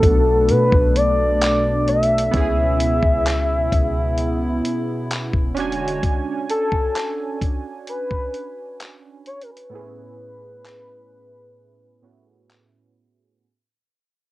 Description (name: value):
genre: contemporary R&B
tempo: 65 BPM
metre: 4/4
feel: straight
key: unclear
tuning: A4 = 441 Hz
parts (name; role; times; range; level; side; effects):
- gliding portamento lead; melody; 0.0-13.0 s; A4 to E5; -21 LUFS; left 1 dB; chorus, low-pass filter, cassette tape
- warm analog keys; accompaniment; 0.0-13.4 s; A2 to G#5; -27 LUFS; right 6 dB; chorus, low-pass filter, cassette tape
- hollow soft pad; sustained chords; 0.0-6.0 s; B2 to C#5; -25 LUFS; left 1 dB; chorus, sidechain pumping, low-pass filter, cassette tape
- warm 808-style bass; bass; 0.0-6.0 s; E1 to B2; -22 LUFS; left 1 dB; none
- dusty soul sampler-style drum kit; drums; 0.0-12.7 s; handclaps, hi-hat, kick drum; -22 LUFS; left 1 dB; cassette tape
room: light reverb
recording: home recording on cassette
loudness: -17 LUFS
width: side -17 dB against mid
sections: 0.0-13.4 A section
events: fade-out 0.0-13.4; filter sweep 0.0-13.4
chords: 0.0 Bm7; 2.3 C#m7; 5.6 E13 (rootless); 9.7 Amaj9